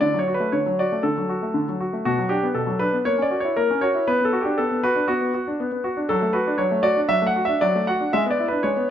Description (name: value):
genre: classical-period piano sonatina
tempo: 118 BPM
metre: 4/4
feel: straight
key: unclear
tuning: A4 = 440 Hz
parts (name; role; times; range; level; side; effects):
- clear concert grand piano; solo; 0.0-8.9 s; B2 to F#5; -19 LUFS; equal; none
room: moderate recital hall reverb, RT60 1.3 s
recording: close, detailed microphones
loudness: -19 LUFS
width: side -9 dB against mid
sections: 0.0-8.9 A section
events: none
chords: 0.0 D; 2.1 Bm; 3.1 F#7/A#; 4.1 Bm; 6.1 D/F#; 8.1 E7/G#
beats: | 0.01 0.52 1.04 1.55 | 2.06 2.57 3.07 3.58 | 4.08 4.58 5.09 5.59 | 6.10 6.60 7.11 7.62 | 8.12 8.63